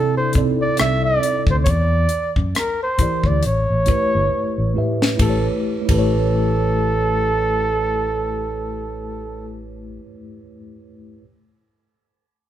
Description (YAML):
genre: R&B, neo-soul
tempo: 68 BPM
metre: 4/4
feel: swing 57% on 16ths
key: unclear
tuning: A4 = 438 Hz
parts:
  - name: warm flugelhorn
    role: melody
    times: 0.0-9.5 s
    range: A4 to E5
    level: -21 LUFS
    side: right 2 dB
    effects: none
  - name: mellow tine electric piano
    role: accompaniment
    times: 0.0-11.2 s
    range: C3 to E5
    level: -23 LUFS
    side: right 1 dB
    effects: medium stereo tremolo
  - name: fretless electric bass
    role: bass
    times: 0.0-10.0 s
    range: G1 to C3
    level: -22 LUFS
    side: left 1 dB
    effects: none
  - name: tight funk drum kit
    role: drums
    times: 0.3-6.1 s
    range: hi-hat, kick drum, ride cymbal, rim click, snare drum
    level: -21 LUFS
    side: left 1 dB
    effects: none
room: moderate large studio reverb, RT60 1.2 s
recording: band playing live in one room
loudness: -16 LUFS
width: side -11 dB against mid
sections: 0.0-5.2 A section; 5.2-8.7 B section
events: drum fill 4.3-5.2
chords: 0.0 C6; 1.7 Em7b5; 3.4 A7